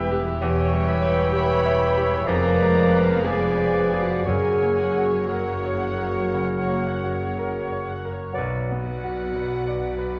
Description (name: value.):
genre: classical, romantic movement for piano and orchestra.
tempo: 57-67 BPM.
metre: 4/4.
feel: rubato.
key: unclear.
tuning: A4 = 440 Hz.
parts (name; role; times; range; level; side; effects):
bright grand piano; melody; 0.0-10.2 s; B1 to E5; -28 LUFS; equal; none.
muted symphonic violin section; melody; 0.0-10.2 s; B4 to D5; -41 LUFS; equal; none.
mellow clarinet; second line; 0.0-8.7 s; A#4 to C#5; -34 LUFS; equal; none.
silver concert flute; second line; 0.0-8.8 s; F5 to G5; -36 LUFS; equal; none.
warm oboe; second line; 0.0-8.7 s; C#5 to E5; -34 LUFS; equal; none.
dark bassoon; accompaniment; 0.0-8.7 s; C#3 to F#3; -33 LUFS; equal; none.
muted symphonic viola section; accompaniment; 0.0-10.2 s; F#3 to G5; -36 LUFS; equal; none.
muted symphonic cello section; bass; 0.0-10.2 s; E2 to B2; -33 LUFS; equal; none.
muted symphonic double bass section; bass; 0.0-10.2 s; E1 to B1; -34 LUFS; equal; none.
muted symphonic violin section; second line; 0.9-10.2 s; F#5 to B5; -37 LUFS; equal; none.
dark French horn section; sustained chords; 0.9-10.2 s; F#4 to B4; -28 LUFS; equal; none.
timpani; percussion; 4.3-5.8 s; F#2; -33 LUFS; equal; none.
room: wet scoring stage reverb, RT60 1.8 s.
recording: worn, warbling old tape, cassette tape, warbly pitch drift.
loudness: -23 LUFS.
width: mono.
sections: 0.0-10.2 A section.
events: none.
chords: 0.4 C#dim/E; 2.3 Fdim7; 4.3 F#; 8.4 Bm.